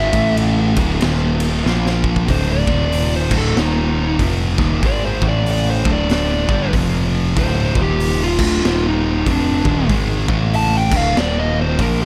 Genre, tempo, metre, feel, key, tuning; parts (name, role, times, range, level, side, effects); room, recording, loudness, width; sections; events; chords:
stoner and doom metal; 95 BPM; 4/4; swing 61% on 8ths; A4 = 439 Hz
fuzz lead guitar; melody; 0.0-12.1 s; D4 to A5; -24 LUFS; equal; distortion, tape echo
overdriven electric guitar; riff; 0.0-12.1 s; D2 to Bb3; -28 LUFS; equal
thick fuzz guitar; riff; 0.0-12.1 s; D2 to Bb3; -25 LUFS; equal; distortion
thick fuzz guitar; riff; 0.0-12.1 s; D2 to Bb3; -26 LUFS; equal
growling picked electric bass; bass; 0.0-12.1 s; D1 to Bb1; -23 LUFS; equal; overdrive
raw garage drum kit; drums; 0.1-12.0 s; crash cymbal, hi-hat, kick drum, ride cymbal, snare drum; -23 LUFS; equal
small room ambience; -17 LUFS; mono
0.0-2.3 A section; 2.3-12.1 B section
drum fill 1.7-2.3; lead electric guitar solo 2.3-12.1
0.1 A5; 0.7 D5; 1.0 Eb5; 1.7 Bb5; 2.3 D5; 2.6 Eb5; 3.2 D5; 3.6 Eb5; 4.2 G#69; 5.2 A5; 5.8 D5; 6.7 F5; 7.4 D5; 7.7 Eb5; 8.3 Dm; 8.6 Eb5; 9.3 Dm; 10.2 A5; 10.9 Dm; 11.2 Eb5